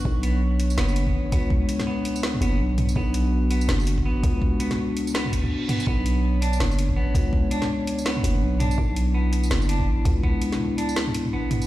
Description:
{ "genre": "half-time drum and bass", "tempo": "165 BPM", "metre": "4/4", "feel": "swing 59% on 16ths, half-time", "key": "B minor", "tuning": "A4 = 441 Hz", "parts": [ { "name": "dark analog pad", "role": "sustained chords", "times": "0.0-11.7 s", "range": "B3 to C#5", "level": "-28 LUFS", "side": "left 2 dB", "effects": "chorus, sidechain pumping" }, { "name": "growling 808-style bass", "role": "bass", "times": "0.0-11.7 s", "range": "F#1 to D2", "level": "-23 LUFS", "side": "equal", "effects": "none" }, { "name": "electronic kick drum", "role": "drums", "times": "0.1-10.3 s", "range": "none", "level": "-24 LUFS", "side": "equal", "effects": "none" }, { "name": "clean electric guitar", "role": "arpeggios", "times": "0.2-11.7 s", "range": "B3 to D4", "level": "-32 LUFS", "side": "right 4 dB", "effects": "tape echo" }, { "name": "drum and bass drum kit", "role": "drums", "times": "0.2-11.7 s", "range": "hi-hat, snare drum, tambourine, toms", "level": "-29 LUFS", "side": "equal", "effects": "overdrive" }, { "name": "reverse cymbal", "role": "sound effects", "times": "5.3-5.9 s", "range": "none", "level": "-38 LUFS", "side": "right 4 dB", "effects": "none" } ], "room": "digital ambience", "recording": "played on a big sound system in a bare room, stone room reverb", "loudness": "-20 LUFS", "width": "side -15 dB against mid", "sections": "0.0-11.7 A section", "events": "reverse cymbal 5.3-5.9", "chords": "0.0 Bmadd9", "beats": "| 0.05 0.42 0.78 1.14 | 1.51 1.87 2.23 2.60 | 2.96 3.33 3.69 4.05 | 4.42 4.78 5.14 5.51 | 5.87 6.24 6.60 6.96 | 7.33 7.69 8.05 8.42 | 8.78 9.14 9.51 9.87 | 10.23 10.60 10.96 11.33" }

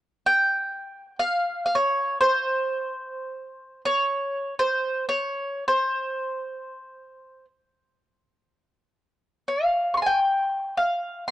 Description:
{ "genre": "japanese traditional, Japanese chamber music", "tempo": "free time", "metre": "none", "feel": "none", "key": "C miyako bushi", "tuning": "A4 = 440 Hz", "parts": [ { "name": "mandolin", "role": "solo", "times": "0.3-11.3 s", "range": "C5 to Db6", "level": "-22 LUFS", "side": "equal", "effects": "none" } ], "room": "moderate spring reverb, RT60 2.7 s", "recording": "worn, warbling old tape, cassette tape, warbly pitch drift", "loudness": "-22 LUFS", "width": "side -14 dB against mid", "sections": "0.0-8.2 A section; 8.2-11.3 A section", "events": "none", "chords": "none", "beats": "free time" }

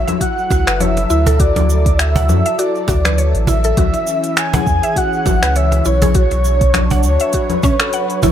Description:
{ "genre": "organic downtempo", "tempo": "101 BPM", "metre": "4/4", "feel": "swing 56% on 16ths", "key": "unclear", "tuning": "A4 = 440 Hz", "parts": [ { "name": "breathy flute-like synth lead", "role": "melody", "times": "0.0-8.3 s", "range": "C#5 to G#5", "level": "-19 LUFS", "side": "equal", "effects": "ensemble chorus, digital delay" }, { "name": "warm analog pad", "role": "sustained chords", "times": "0.0-8.3 s", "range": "E3 to D5", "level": "-23 LUFS", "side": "left 2 dB", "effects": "lush chorus, sidechain pumping" }, { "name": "warm sub bass", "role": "bass", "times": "0.0-8.3 s", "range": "F#1 to F#2", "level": "-15 LUFS", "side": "equal", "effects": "sidechain pumping" }, { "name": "mallet-like synth pluck", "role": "arpeggios", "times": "0.1-8.3 s", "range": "C#4 to F#5", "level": "-22 LUFS", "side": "equal", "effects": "chorus, digital delay" }, { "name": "organic electronic drum kit", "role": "drums", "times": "0.1-8.3 s", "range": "congas, finger snaps, hi-hat, shaker", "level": "-19 LUFS", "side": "left 3 dB", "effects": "none" }, { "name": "electronic kick drum", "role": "drums", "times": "0.2-7.8 s", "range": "none", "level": "-18 LUFS", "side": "equal", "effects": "none" }, { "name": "cajon", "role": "percussion", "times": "0.5-8.3 s", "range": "none", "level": "-20 LUFS", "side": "right 3 dB", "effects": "none" } ], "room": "light reverb, digital ambience", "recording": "none", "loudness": "-12 LUFS", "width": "side -10 dB against mid", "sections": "0.0-8.3 A section", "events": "none", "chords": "0.0 F#m7; 1.4 Dadd9; 3.8 C#m; 6.2 Bmadd9", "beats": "0.21 0.81 | 1.40 1.99 2.59 3.18 | 3.78 4.37 4.96 5.56 | 6.15 6.75 7.34 7.93" }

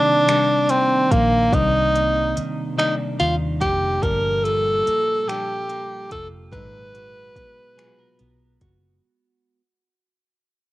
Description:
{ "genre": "slow six-eight R&B", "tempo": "48 BPM (dotted quarters)", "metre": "6/8", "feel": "straight", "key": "unclear", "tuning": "A4 = 439 Hz", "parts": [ { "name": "clear tenor saxophone", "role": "melody", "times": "0.0-8.6 s", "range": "Bb3 to Cb5", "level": "-19 LUFS", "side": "equal", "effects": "cassette tape" }, { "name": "clean electric guitar", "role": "second line", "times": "0.0-9.6 s", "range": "C3 to Bb4", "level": "-30 LUFS", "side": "right 6 dB", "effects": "cassette tape" }, { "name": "reed electric piano", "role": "accompaniment", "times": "0.0-9.0 s", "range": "Bb2 to D5", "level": "-30 LUFS", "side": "left 6 dB", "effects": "cassette tape" }, { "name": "smooth R&B drum kit", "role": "drums", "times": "0.3-8.8 s", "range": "finger snaps, hi-hat, kick drum", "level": "-26 LUFS", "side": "equal", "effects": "cassette tape" }, { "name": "vintage muted fingered electric bass", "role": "bass", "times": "1.1-9.0 s", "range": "F1 to Eb2", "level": "-25 LUFS", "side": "equal", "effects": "none" } ], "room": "light reverb, digital ambience", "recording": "home recording on cassette", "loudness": "-17 LUFS", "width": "side -17 dB against mid", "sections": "0.0-9.0 A section", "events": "fade-out 0.0-9.0", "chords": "0.0 Cm9; 4.0 Gm9; 6.5 Abm9", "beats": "0.27 | 1.52 2.77 | 4.02 5.27 | 6.52 7.77" }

